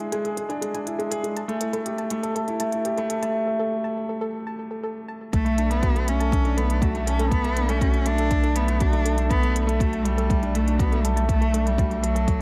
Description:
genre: piano and strings electronica.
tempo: 121 BPM.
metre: 4/4.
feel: straight.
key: B minor.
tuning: A4 = 443 Hz.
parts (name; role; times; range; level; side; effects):
dark upright piano; riff; 0.0-12.4 s; G#3 to A4; -29 LUFS; equal; delay.
electronic hi-hat; drums; 0.0-12.4 s; none; -38 LUFS; equal; none.
soft round pluck; arpeggios; 0.1-12.2 s; G#4 to A5; -38 LUFS; equal; chorus, sidechain pumping, delay.
warm cello; melody; 5.3-12.4 s; F#3 to D4; -29 LUFS; equal; none.
round analog bass; bass; 5.3-12.4 s; B1; -27 LUFS; equal; sidechain pumping.
electronic kick drum; drums; 5.3-12.4 s; none; -26 LUFS; equal; overdrive.
room: moderate scoring stage reverb, RT60 2.1 s.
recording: none.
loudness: -24 LUFS.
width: mono.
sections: 0.0-5.3 A section; 5.3-12.4 B section.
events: build-up 0.0-5.3; break 3.3-5.3; drop 5.3-12.4.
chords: 0.0 E7; 1.4 A5; 5.3 Bm7.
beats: 0.37 0.87 | 1.36 1.86 2.36 2.85 | 3.35 3.84 4.34 4.84 | 5.33 5.83 6.32 6.82 | 7.32 7.81 8.31 8.80 | 9.30 9.79 10.29 10.79 | 11.28 11.78 12.27.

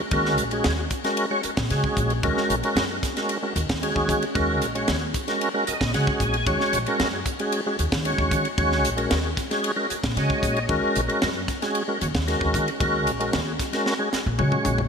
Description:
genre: electric jazz fusion.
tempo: 114 BPM.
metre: 4/4.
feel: straight.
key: Eb minor.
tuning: A4 = 440 Hz.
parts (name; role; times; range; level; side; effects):
tonewheel organ; accompaniment; 0.1-14.8 s; Ab3 to Ab5; -24 LUFS; equal; slow rotary speaker, overdrive, chorus vibrato.
upright bass; bass; 0.1-14.9 s; Bb1 to Eb3; -27 LUFS; equal; none.
tight funk drum kit; drums; 0.1-14.9 s; hi-hat, kick drum, ride cymbal, snare drum, toms; -27 LUFS; equal; none.
room: moderate lush hall reverb, RT60 2.6 s.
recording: bright 1980s-style digital production.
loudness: -21 LUFS.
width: side -6 dB against mid.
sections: 0.0-14.9 A section.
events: tonewheel organ fill 5.4-6.5, 9.9-10.7; drum fill 13.9-14.9.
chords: 0.0 Ebm7.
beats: | 0.12 0.65 1.18 1.71 | 2.24 2.77 3.29 3.82 | 4.35 4.88 5.41 5.94 | 6.47 7.00 7.52 8.05 | 8.58 9.11 9.64 10.16 | 10.69 11.22 11.75 12.28 | 12.80 13.33 13.86 14.39.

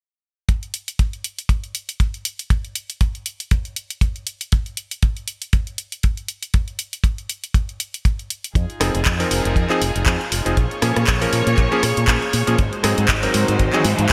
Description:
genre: nu-disco, nu disco.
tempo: 119 BPM.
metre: 4/4.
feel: swing 56% on 16ths.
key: Bb minor.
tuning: A4 = 439 Hz.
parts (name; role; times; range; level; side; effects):
house drum kit; drums; 0.5-14.1 s; handclaps, hi-hat, rim click; -26 LUFS; equal; gated reverb.
kick drum; drums; 0.5-14.1 s; none; -20 LUFS; equal; none.
rich studio string section; sustained chords; 8.5-14.1 s; Ab3 to Db5; -27 LUFS; equal; sidechain pumping.
fingered electric bass with an envelope filter; bass; 8.6-14.1 s; F1 to Bb2; -24 LUFS; equal; none.
bright electric grand piano; accompaniment; 8.8-14.1 s; F3 to Bb4; -24 LUFS; equal; digital delay.
riser; sound effects; 13.5-14.1 s; none; -30 LUFS; equal; none.
room: light reverb, small room ambience.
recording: bright 1980s-style digital production.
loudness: -21 LUFS.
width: mono.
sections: 0.5-14.1 A section.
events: riser 13.5-14.1.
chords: 0.5 N.C.; 8.6 Fm7; 10.6 Bbm7; 12.6 Ab7.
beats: | 0.49 0.99 1.50 2.00 | 2.50 3.01 3.51 4.02 | 4.52 5.03 5.53 6.03 | 6.54 7.04 7.55 8.05 | 8.55 9.06 9.56 10.07 | 10.57 11.07 11.58 12.08 | 12.59 13.09 13.60 14.10.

